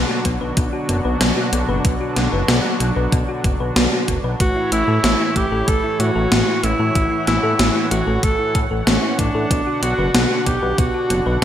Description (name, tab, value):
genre	synthwave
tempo	94 BPM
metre	4/4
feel	straight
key	B minor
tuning	A4 = 439 Hz
part	brassy analog pad	sustained chords	0.0-11.4 s	A2 to F#5	-25 LUFS	equal	chorus, sidechain pumping
part	thumb-piano-like synth pluck	arpeggios	0.0-11.3 s	A3 to B4	-25 LUFS	left 2 dB	chorus, digital delay
part	fat analog bass	bass	0.0-11.4 s	F#1 to A2	-21 LUFS	equal	tube saturation, sidechain pumping
part	gated 80s digital drum machine	drums	0.2-11.4 s	hi-hat, snare drum	-20 LUFS	equal	gated reverb, gated reverb snare, overdrive
part	electronic kick drum	drums	0.3-10.9 s	none	-21 LUFS	equal	overdrive
part	warm alto saxophone	melody	4.4-11.4 s	C#4 to A4	-20 LUFS	right 1 dB	digital delay
room	moderate lush hall reverb, RT60 1.6 s, digital ambience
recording	bright 1980s-style digital production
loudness	-16 LUFS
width	side -10 dB against mid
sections	0.0-11.4 A section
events	none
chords	0.0 Bm; 4.4 A; 9.5 Bm